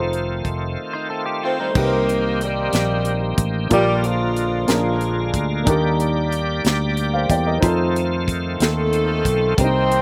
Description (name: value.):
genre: slow gospel.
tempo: 61 BPM (dotted quarters).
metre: 6/8.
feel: straight.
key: unclear.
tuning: A4 = 441 Hz.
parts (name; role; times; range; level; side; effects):
warm upright piano; accompaniment; 0.0-10.0 s; Bb2 to G5; -26 LUFS; equal; slapback echo.
bright tonewheel organ; sustained chords; 0.0-10.0 s; Db3 to D5; -28 LUFS; equal; fast rotary speaker, overdrive, chorus vibrato.
fingered electric bass; bass; 0.0-10.0 s; F1 to F2; -25 LUFS; equal; none.
tight funk drum kit; drums; 0.1-10.0 s; crash cymbal, hi-hat, kick drum, snare drum; -24 LUFS; equal; none.
clean electric guitar; second line; 0.9-1.9 s; G3 to C5; -30 LUFS; equal; none.
mellow saxophone section; melody; 1.4-5.6, 8.6-10.0 s; Ab3 to C5; -27 LUFS; equal; slapback echo.
warm tenor saxophone; melody; 1.4-5.4, 8.6-10.0 s; F3 to C4; -26 LUFS; equal; slapback echo.
room: little or no reverb.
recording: recorded outdoors, with no room sound.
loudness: -20 LUFS.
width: mono.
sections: 0.0-1.8 A section; 1.8-10.0 B section.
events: none.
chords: 0.0 F7; 1.8 Cm7; 3.7 Bb7; 5.7 Ebmaj7; 7.6 F7.